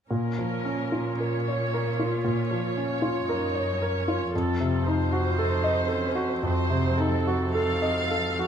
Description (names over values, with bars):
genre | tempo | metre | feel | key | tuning
classical, romantic movement for piano and orchestra | 52-59 BPM | 4/4 | rubato | Bb minor | A4 = 442 Hz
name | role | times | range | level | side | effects
clear concert grand piano | melody | 0.1-8.5 s | F2 to Eb5 | -26 LUFS | equal | none
warm studio viola section | accompaniment | 0.1-8.4 s | C4 to Db5 | -30 LUFS | right 1 dB | none
warm studio cello section | bass | 0.1-8.4 s | F2 to Bb2 | -32 LUFS | right 1 dB | none
rich studio violin section | melody | 7.5-8.5 s | F5 | -29 LUFS | left 1 dB | none
room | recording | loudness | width
light reverb | close, detailed microphones | -24 LUFS | side -8 dB against mid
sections
0.1-8.5 A section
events
none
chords
0.1 Bbm; 4.3 F7b9